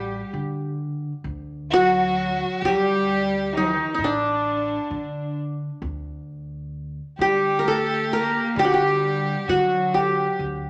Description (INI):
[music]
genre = Arabic maqam ensemble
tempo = 131 BPM (eighths)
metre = 10/8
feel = straight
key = D maqam hijaz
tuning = A4 = 440 Hz
[part]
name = qanun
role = melody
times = 0.0-10.7 s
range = D4 to Bb4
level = -24 LUFS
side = equal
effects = none
[part]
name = rich chamber cello section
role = second line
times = 0.0-10.4 s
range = D3 to Bb3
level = -31 LUFS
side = equal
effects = none
[part]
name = rich violin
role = second line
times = 0.0-10.4 s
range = D4 to A4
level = -33 LUFS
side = equal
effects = none
[part]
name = upright bass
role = bass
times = 0.0-10.7 s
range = A1 to D3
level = -34 LUFS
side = equal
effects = none
[sound]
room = wet large studio reverb, RT60 1.1 s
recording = none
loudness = -23 LUFS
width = mono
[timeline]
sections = 0.0-5.8 A section; 5.8-10.7 B section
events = none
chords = none